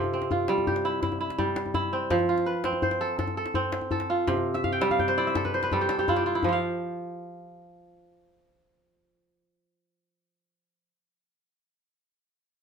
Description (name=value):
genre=west african traditional, West African string and xylophone music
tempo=111 BPM (dotted quarters)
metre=12/8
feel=straight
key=unclear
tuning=A4 = 439 Hz
part: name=kora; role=arpeggios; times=0.0-11.0 s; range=C3 to G5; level=-25 LUFS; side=right 1 dB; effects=none
part: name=djembe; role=percussion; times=0.0-6.6 s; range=none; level=-32 LUFS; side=left 4 dB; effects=none
room=moderate studio reverb, RT60 0.6 s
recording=none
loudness=-24 LUFS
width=side -6 dB against mid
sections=0.0-6.4 A section; 6.4-10.8 B section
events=kora fill 4.5-6.4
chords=0.0 C; 2.1 F; 4.3 C; 6.4 N.C.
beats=0.49 1.03 1.57 | 2.11 2.65 3.19 3.73 | 4.27 4.81 5.35 5.89 | 6.43 6.97 7.51 8.05 | 8.59 9.13 9.67 10.21